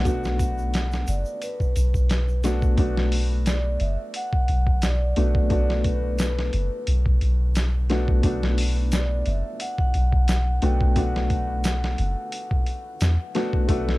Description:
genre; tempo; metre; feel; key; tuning
trip hop; 88 BPM; 4/4; swing 54% on 16ths; B minor; A4 = 440 Hz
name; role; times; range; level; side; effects
vibraphone with soft mallets; melody; 0.0-13.3 s; B4 to G5; -32 LUFS; equal; tape echo
dark upright piano; accompaniment; 0.0-14.0 s; A3 to F#4; -29 LUFS; left 1 dB; harmonic tremolo, tape echo
soft 808-style bass; bass; 0.0-14.0 s; F#1 to E2; -22 LUFS; equal; none
boom bap sampler-style drum kit; drums; 0.1-14.0 s; hi-hat, kick drum, snare drum; -24 LUFS; equal; studio reverb
egg shaker; percussion; 0.1-13.2 s; none; -43 LUFS; right 3 dB; none
nylon-string guitar; arpeggios; 13.7-14.0 s; A3; -28 LUFS; left 5 dB; tape echo
room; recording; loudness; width
little or no reverb; dark, warm production; -20 LUFS; side -19 dB against mid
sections
0.0-2.8 A section; 2.8-14.0 B section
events
none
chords
0.0 Bm7

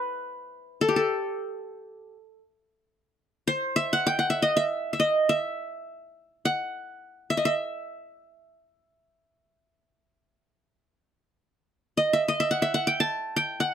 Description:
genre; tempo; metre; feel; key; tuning
Turkish makam ensemble; free time; none; none; unclear; A4 = 440 Hz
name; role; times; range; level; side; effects
qanun; solo; 0.0-13.7 s; G4 to A5; -24 LUFS; equal; none
room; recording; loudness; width
little or no reverb; close, detailed microphones; -24 LUFS; side -9 dB against mid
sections
0.0-13.7 A section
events
none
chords
none

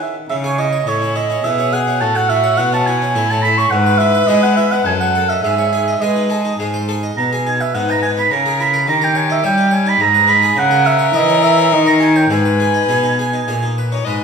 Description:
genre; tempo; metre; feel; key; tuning
classical, baroque-style sonata movement with continuo; 105 BPM; 3/4; straight; C# minor, G# minor from 7.2 s; A4 = 441 Hz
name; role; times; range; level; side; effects
warm oboe; second line; 0.0-14.2 s; B4 to C#6; -15 LUFS; right 4 dB; none
harpsichord; accompaniment; 0.0-14.2 s; F#2 to D#5; -23 LUFS; left 1 dB; none
rich cello; bass; 0.0-14.2 s; F#2 to G#3; -18 LUFS; left 1 dB; none
rich violin; melody; 0.9-14.2 s; E4 to D#5; -21 LUFS; left 8 dB; none
room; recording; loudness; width
wet recital hall reverb, RT60 1.3 s; minimal, uncompressed stereo recording; -12 LUFS; side -6 dB against mid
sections
0.3-14.1 A section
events
none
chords
0.3 C#m; 2.0 A; 3.7 E/G#; 4.8 D#m7b5/F#; 5.4 G#sus4; 6.6 G#; 7.2 G#m/B; 8.3 A#m7b5/C#; 8.9 D#7; 10.0 G#m; 10.6 A#dim/C#; 11.7 D#7; 12.3 G#m

